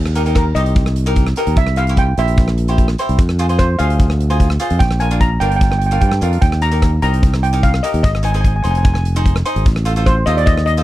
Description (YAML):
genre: calypso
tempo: 148 BPM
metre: 4/4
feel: straight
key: Eb major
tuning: A4 = 440 Hz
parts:
  - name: modern bright fingered electric bass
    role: bass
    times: 0.0-10.8 s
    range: F1 to G2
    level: -16 LUFS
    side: equal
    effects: none
  - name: big rock drum kit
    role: drums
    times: 0.1-10.8 s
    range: hi-hat, kick drum, rim click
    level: -16 LUFS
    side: equal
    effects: none
  - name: cavaquinho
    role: accompaniment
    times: 0.2-10.8 s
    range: D4 to C5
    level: -22 LUFS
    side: equal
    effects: none
  - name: steel pan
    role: melody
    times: 0.4-10.8 s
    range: Bb4 to Bb5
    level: -20 LUFS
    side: right 1 dB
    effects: none
room: little or no reverb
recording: dry, close 1970s-style studio recording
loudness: -12 LUFS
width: side -15 dB against mid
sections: 0.0-10.8 A section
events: none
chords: 0.0 Eb; 1.6 C7; 3.2 Fm; 4.8 Bb; 6.4 Eb; 8.0 Ab; 9.7 F7/A